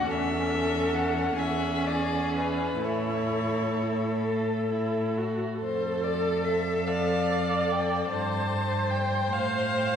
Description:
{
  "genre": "classical, slow romantic movement for string quartet",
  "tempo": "41-50 BPM (dotted quarters)",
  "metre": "6/8",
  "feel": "rubato",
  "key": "A major, F major from 5.6 s",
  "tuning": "A4 = 445 Hz",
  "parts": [
    { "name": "rich violin", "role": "melody", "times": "0.0-10.0 s", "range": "B4 to A5", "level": "-32 LUFS", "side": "left 4 dB", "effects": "none" },
    { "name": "rich violin", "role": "second line", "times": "0.0-10.0 s", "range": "G#4 to C5", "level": "-31 LUFS", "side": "left 3 dB", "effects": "none" },
    { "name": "warm viola", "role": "accompaniment", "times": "0.0-10.0 s", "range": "C#4 to D5", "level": "-30 LUFS", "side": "right 2 dB", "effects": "none" },
    { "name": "clear cello", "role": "bass", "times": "0.0-10.0 s", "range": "E2 to A2", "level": "-30 LUFS", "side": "right 2 dB", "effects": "none" }
  ],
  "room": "wet church reverb, RT60 3.9 s",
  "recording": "recorded in a church or concert hall",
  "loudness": "-25 LUFS",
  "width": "side -8 dB against mid",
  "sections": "0.0-5.6 A section; 5.6-10.0 B section",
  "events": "none",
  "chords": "0.1 A/E; 2.8 A; 5.6 F; 8.1 C5/G; 9.3 F/A",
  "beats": "| 0.07 1.38 | 2.81 4.24 | 5.62 6.88 | 8.12 9.33"
}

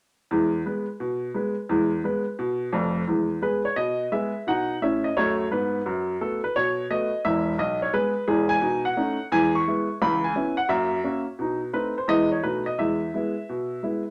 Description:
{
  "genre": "jazz, stride piano",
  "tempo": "173 BPM",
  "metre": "4/4",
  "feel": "swing 66% on 8ths",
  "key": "E major",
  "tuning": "A4 = 440 Hz",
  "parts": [
    { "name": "clear upright piano", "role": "solo", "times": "0.3-14.0 s", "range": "E1 to C#6", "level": "-25 LUFS", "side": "equal", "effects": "none" }
  ],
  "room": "wet small room reverb, RT60 0.5 s",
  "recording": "none",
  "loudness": "-25 LUFS",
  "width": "mono",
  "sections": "0.3-3.1 A section; 3.1-14.1 B section",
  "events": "none",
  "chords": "0.3 E; 4.5 B7; 5.9 B7/F#; 7.2 E; 8.6 B9; 9.3 E; 10.0 C#m7; 10.7 F#7; 11.4 B7b9; 12.1 E; 12.4 B7; 12.8 E",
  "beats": "| 0.31 0.66 1.00 1.35 | 1.70 2.04 2.39 2.74 | 3.08 3.43 3.77 4.12 | 4.47 4.82 5.16 5.51 | 5.86 6.20 6.55 6.89 | 7.24 7.59 7.93 8.28 | 8.63 8.97 9.32 9.67 | 10.02 10.36 10.71 11.06 | 11.40 11.75 12.10 12.44 | 12.79 13.14 13.48 13.83"
}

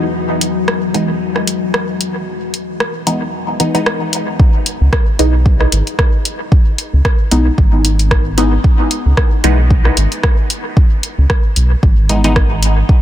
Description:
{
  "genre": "dub techno",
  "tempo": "113 BPM",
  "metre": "4/4",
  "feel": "swing 56% on 16ths",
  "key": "C# minor",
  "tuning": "A4 = 440 Hz",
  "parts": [
    { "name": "deep dark ambient pad", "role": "sustained chords", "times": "0.0-4.4 s", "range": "E3 to F#4", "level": "-21 LUFS", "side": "left 5 dB", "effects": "chorus, built-in reverb, sidechain pumping" },
    { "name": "filtered dub chord stab", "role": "stabs", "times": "0.0-13.0 s", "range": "E3 to D#4", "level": "-18 LUFS", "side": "equal", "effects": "phaser, sidechain pumping, dub echo" },
    { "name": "deep house drum kit", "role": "drums", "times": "0.4-12.7 s", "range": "hi-hat, rim click", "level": "-20 LUFS", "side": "equal", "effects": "overdrive, dub echo" },
    { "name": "electronic kick drum", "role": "drums", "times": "4.4-13.0 s", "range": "none", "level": "-11 LUFS", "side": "equal", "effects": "overdrive" },
    { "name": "round analog bass", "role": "bass", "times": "4.8-12.8 s", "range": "G#1 to C#2", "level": "-12 LUFS", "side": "equal", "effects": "sidechain pumping" }
  ],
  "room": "light reverb",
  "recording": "dense, heavily limited modern master",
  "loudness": "-11 LUFS",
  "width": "side -12 dB against mid",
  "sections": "0.0-4.4 A section; 4.4-13.0 B section",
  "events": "filter sweep on ambient pad 0.0-4.4",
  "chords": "0.0 C#m9 (rootless)",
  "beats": "| 0.15 0.68 1.21 1.74 | 2.27 2.80 3.33 3.86 | 4.39 4.93 5.46 5.99 | 6.52 7.05 7.58 8.11 | 8.64 9.17 9.71 10.24 | 10.77 11.30 11.83 12.36 | 12.89"
}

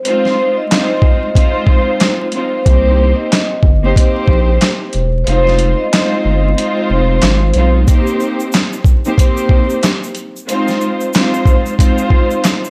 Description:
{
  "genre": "hip hop, boom-bap hip-hop",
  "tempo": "92 BPM",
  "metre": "4/4",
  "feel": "swing 58% on 16ths",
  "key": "C minor",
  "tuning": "A4 = 440 Hz",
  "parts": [
    { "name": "dark studio string section", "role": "accompaniment", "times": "0.0-12.7 s", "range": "Ab3 to C5", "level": "-19 LUFS", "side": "equal", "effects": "cassette tape, high-pass filter, low-pass filter" },
    { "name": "vibraphone with soft mallets", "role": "melody", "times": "0.1-7.8 s", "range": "C5 to Eb5", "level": "-21 LUFS", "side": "equal", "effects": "high-pass filter, low-pass filter, tape echo" },
    { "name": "boom bap sampler-style drum kit", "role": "drums", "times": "0.1-12.6 s", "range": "handclaps, hi-hat, kick drum, snare drum", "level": "-15 LUFS", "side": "equal", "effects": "vintage 12-bit sampler grit" },
    { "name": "saturated sub bass", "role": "bass", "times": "2.7-7.9 s", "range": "E1 to C2", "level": "-16 LUFS", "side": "equal", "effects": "none" },
    { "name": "egg shaker", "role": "percussion", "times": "7.9-12.7 s", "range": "none", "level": "-36 LUFS", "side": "equal", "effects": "none" }
  ],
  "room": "small room ambience",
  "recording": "vinyl crackle",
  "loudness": "-13 LUFS",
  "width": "mono",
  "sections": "0.0-7.9 A section; 7.9-12.7 B section",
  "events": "kick muted 5.3-7.9",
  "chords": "0.1 Fm7; 2.7 Cm7; 5.3 Fm7; 7.9 Cm7; 10.5 Fm7",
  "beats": "| 0.05 0.70 1.36 2.01 | 2.66 3.31 3.96 4.62 | 5.27 5.92 6.57 7.22 | 7.88 8.53 9.18 9.83 | 10.49 11.14 11.79 12.44"
}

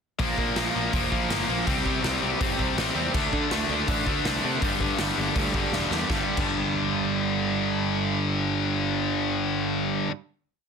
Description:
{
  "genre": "punk rock",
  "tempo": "163 BPM",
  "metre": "4/4",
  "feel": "straight",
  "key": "unclear",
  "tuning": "A4 = 440 Hz",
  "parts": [
    { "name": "distorted electric guitar", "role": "riff", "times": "0.2-10.1 s", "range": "G2 to D4", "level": "-30 LUFS", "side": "right 18 dB", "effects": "distortion" },
    { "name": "high-gain distorted guitar", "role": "riff", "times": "0.2-10.1 s", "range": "G2 to D4", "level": "-31 LUFS", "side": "right 2 dB", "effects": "distortion" },
    { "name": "tight distorted guitar", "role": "riff", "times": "0.2-10.1 s", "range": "G2 to D4", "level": "-27 LUFS", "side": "left 11 dB", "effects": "distortion" },
    { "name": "fuzz picked electric bass", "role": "bass", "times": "0.2-10.0 s", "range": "E1 to D3", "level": "-32 LUFS", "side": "equal", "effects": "overdrive" },
    { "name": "raw garage drum kit", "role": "drums", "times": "0.2-6.5 s", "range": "crash cymbal, hi-hat, kick drum, snare drum", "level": "-30 LUFS", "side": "equal", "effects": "none" }
  ],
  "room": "little or no reverb",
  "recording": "dense, heavily limited modern master",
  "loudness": "-23 LUFS",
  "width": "side -6 dB against mid",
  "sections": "0.2-6.1 riff; 6.1-9.1 final chord",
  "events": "drum fill 5.7-6.1",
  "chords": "0.2 Bb5; 1.7 C5; 3.1 D5; 4.6 G5",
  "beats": "| 0.19 0.56 0.93 1.30 | 1.67 2.04 2.41 2.78 | 3.15 3.52 3.88 4.25 | 4.62 4.99 5.36 5.72 | 6.09 6.46 6.83 7.20 | 7.57 7.94 8.31 8.68"
}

